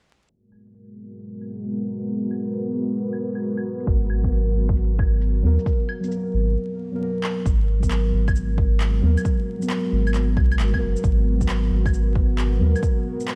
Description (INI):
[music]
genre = future garage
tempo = 134 BPM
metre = 4/4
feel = swing 66% on 16ths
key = G# minor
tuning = A4 = 440 Hz
[part]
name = dark analog pad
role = sustained chords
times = 0.9-13.4 s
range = G#3 to A#4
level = -31 LUFS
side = equal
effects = chorus, sidechain pumping
[part]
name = electronic shaker, claves and handclaps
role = drums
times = 0.3-13.4 s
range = none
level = -36 LUFS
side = equal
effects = overdrive, vintage 12-bit sampler grit
[part]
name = soft dub sub bass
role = bass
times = 3.9-12.7 s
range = F#1 to D#2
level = -23 LUFS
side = equal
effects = tube saturation, sidechain pumping
[part]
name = electronic kick drum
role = drums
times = 3.9-12.9 s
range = none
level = -24 LUFS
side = equal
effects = overdrive, vintage 12-bit sampler grit
[part]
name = muted felt-like synth keys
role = accompaniment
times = 4.2-12.8 s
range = F#3 to A#4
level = -30 LUFS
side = equal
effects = chorus, sidechain pumping, diffuse ambient delay
[sound]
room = moderate lush hall reverb, RT60 1.9 s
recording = dreamy mix soaked in reverb, vinyl crackle, low-pass filter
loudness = -22 LUFS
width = mono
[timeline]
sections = 0.3-7.5 A section; 7.5-13.4 B section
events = filter sweep 0.3-7.5; break 6.6-7.5; drum fill 7.2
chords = 0.3 G#m9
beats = | 0.30 0.74 1.19 1.64 | 2.09 2.54 2.98 3.43 | 3.88 4.33 4.78 5.22 | 5.67 6.12 6.57 7.01 | 7.46 7.91 8.36 8.80 | 9.25 9.70 10.15 10.60 | 11.04 11.49 11.94 12.39 | 12.84 13.28